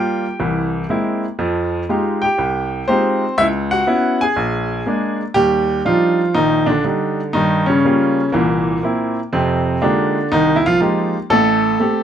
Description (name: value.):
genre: solo jazz.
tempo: 121 BPM.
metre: 4/4.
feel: swing 67% on 8ths.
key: Eb major from 5.4 s.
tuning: A4 = 439 Hz.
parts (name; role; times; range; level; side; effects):
clear baby grand piano; solo; 0.0-12.0 s; A1 to Ab5; -15 LUFS; equal; none.
room: light reverb.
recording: none.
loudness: -15 LUFS.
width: side -9 dB against mid.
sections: 0.0-5.4 A section; 5.4-12.0 B section.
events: none.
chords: 0.4 C7b13; 1.4 Fm9; 3.4 Dbm7; 4.4 Bb7; 5.4 Ebmaj7; 7.3 Gm7b5; 8.3 C7; 9.3 Fm11; 11.3 Am7.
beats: 0.40 0.89 | 1.39 1.89 2.38 2.88 | 3.38 3.87 4.37 4.86 | 5.36 5.86 6.35 6.85 | 7.34 7.84 8.34 8.83 | 9.33 9.82 10.32 10.81 | 11.31 11.81.